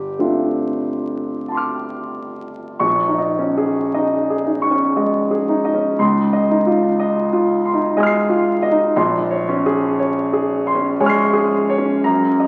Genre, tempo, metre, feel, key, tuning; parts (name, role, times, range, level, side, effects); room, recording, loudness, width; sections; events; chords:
classical, impressionist solo piano; 44-62 BPM; 3/4; rubato; Bb minor; A4 = 440 Hz
warm concert grand piano; solo; 0.0-12.5 s; G1 to C7; -18 LUFS; equal
wet recital hall reverb, RT60 1.7 s; very old 78 rpm record, vinyl crackle; -18 LUFS; mono
0.0-2.8 A section; 2.8-12.5 B section
0.0 G9sus4; 2.8 Bbm7; 6.0 Dbmaj9; 9.0 Bbm9